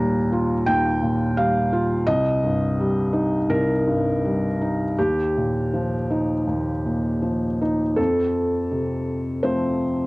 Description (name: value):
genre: neoclassical minimalist piano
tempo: 78-86 BPM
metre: 4/4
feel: rubato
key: unclear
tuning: A4 = 440 Hz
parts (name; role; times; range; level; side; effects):
- felt-muted upright piano; solo; 0.0-10.1 s; C2 to Bb5; -20 LUFS; equal; cassette tape
room: light reverb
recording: home recording on cassette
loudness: -20 LUFS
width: side -22 dB against mid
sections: 0.0-8.0 A section; 8.0-10.1 B section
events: none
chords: 0.0 Ebadd9; 2.1 Cm7; 5.0 Ebadd9; 8.0 F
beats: 0.64 1.34 | 2.06 2.76 3.49 4.22 | 4.97 5.72 6.46 7.22 | 7.97 8.70 9.41